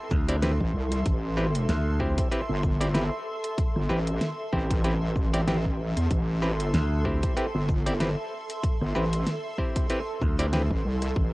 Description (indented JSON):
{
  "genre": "glitch hop",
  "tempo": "95 BPM",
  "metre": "4/4",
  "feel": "swing 56% on 16ths",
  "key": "A minor",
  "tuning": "A4 = 440 Hz",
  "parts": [
    { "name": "downlifter", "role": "sound effects", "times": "0.0-1.1 s", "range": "none", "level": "barely audible", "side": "none", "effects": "none" },
    { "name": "granular cloud pad", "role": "texture", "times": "0.0-11.3 s", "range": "A4 to C6", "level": "-34 LUFS", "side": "right 1 dB", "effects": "built-in reverb, sidechain pumping, cassette tape" },
    { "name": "vintage slap bass", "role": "bass", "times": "0.1-2.2, 6.7-10.7 s", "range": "D2", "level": "-25 LUFS", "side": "equal", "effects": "none" },
    { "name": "electronic kick drum", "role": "drums", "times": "0.1-11.3 s", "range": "none", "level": "-27 LUFS", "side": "equal", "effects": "cassette tape" },
    { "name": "pop drum kit", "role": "drums", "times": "0.1-11.1 s", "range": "hi-hat, rim click, shaker, snare drum", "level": "-31 LUFS", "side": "equal", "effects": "cassette tape" },
    { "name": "clav", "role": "stabs", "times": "0.3-10.6 s", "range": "C4 to D5", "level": "-31 LUFS", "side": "equal", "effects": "sidechain pumping, cassette tape, analog delay" },
    { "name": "wobble bass", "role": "bass", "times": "0.6-11.3 s", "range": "G1 to E2", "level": "-26 LUFS", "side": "equal", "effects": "chorus, tube saturation" }
  ],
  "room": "light reverb",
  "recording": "home recording on cassette, lossy compression artefacts",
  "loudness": "-24 LUFS",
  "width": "side -20 dB against mid",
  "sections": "0.0-11.3 A section",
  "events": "none",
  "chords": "0.0 Am7",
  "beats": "0.42 | 1.06 1.69 2.32 2.95 | 3.58 4.21 4.84 5.48 | 6.11 6.74 7.37 8.00 | 8.63 9.27 9.90 10.53 | 11.16"
}